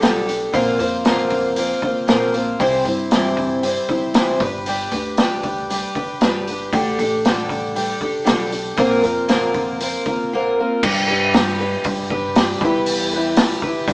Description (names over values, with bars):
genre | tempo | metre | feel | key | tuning
folk rock and heartland rock | 117 BPM | 4/4 | straight | unclear | A4 = 439 Hz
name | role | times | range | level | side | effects
picked twelve-string acoustic guitar | accompaniment | 0.0-13.9 s | Bb2 to C5 | -19 LUFS | equal | none
upright bass | bass | 0.0-13.9 s | G1 to G2 | -27 LUFS | equal | none
vintage drum kit | drums | 0.0-13.9 s | crash cymbal, hi-hat, kick drum, snare drum | -20 LUFS | equal | none
room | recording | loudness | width
light reverb | band playing live in one room, small speaker sound | -16 LUFS | side -27 dB against mid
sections
0.0-10.8 A section; 10.8-13.9 B section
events
none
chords
0.0 Dsus4; 0.5 Bbadd9; 2.6 C; 4.4 G; 6.7 Dsus4; 8.8 Bbadd9; 10.8 G; 12.6 Em